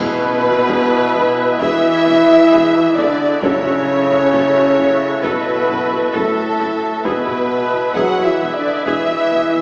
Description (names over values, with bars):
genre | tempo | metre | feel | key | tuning
cinematic, epic orchestral film score | 66 BPM | 4/4 | straight | unclear | A4 = 440 Hz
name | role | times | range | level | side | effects
rich symphonic violin section | melody | 0.0-9.6 s | A4 to F#5 | -26 LUFS | equal | none
mellow hollow silver concert flute | second line | 0.0-9.6 s | A4 to F#5 | -22 LUFS | equal | none
warm symphonic violin section | second line | 0.0-9.6 s | A4 to F#5 | -25 LUFS | equal | none
rich symphonic viola section | accompaniment | 0.0-9.6 s | B3 to E5 | -26 LUFS | equal | none
dark French horn section | sustained chords | 0.0-9.6 s | A3 to F#4 | -21 LUFS | equal | none
warm trombone section | sustained chords | 0.0-9.6 s | A2 to F#3 | -26 LUFS | equal | none
warm woodwind section | sustained chords | 0.0-9.6 s | G#3 to B4 | -26 LUFS | equal | none
dark symphonic cello section | bass | 0.0-9.6 s | A2 to F#3 | -27 LUFS | equal | none
warm symphonic double bass section | bass | 0.0-9.6 s | E2 to F#2 | -37 LUFS | equal | none
taiko ensemble | drums | 0.0-9.6 s | none | -35 LUFS | equal | none
impact | sound effects | 0.0-3.4 s | none | barely audible | none | none
dark tuba | bass | 0.7-9.4 s | E1 to F#1 | -30 LUFS | equal | none
timpani | percussion | 3.4-4.7 s | F#2 | -36 LUFS | equal | none
room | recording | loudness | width
wet scoring stage reverb, RT60 1.6 s | heard from further back in the room, small speaker sound | -15 LUFS | mono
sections
0.0-9.6 A section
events
impact 0.0-3.4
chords
0.0 E; 3.4 F#m7; 7.0 E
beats
0.68 1.61 2.52 | 3.42 4.33 5.24 6.14 | 7.04 7.95 8.86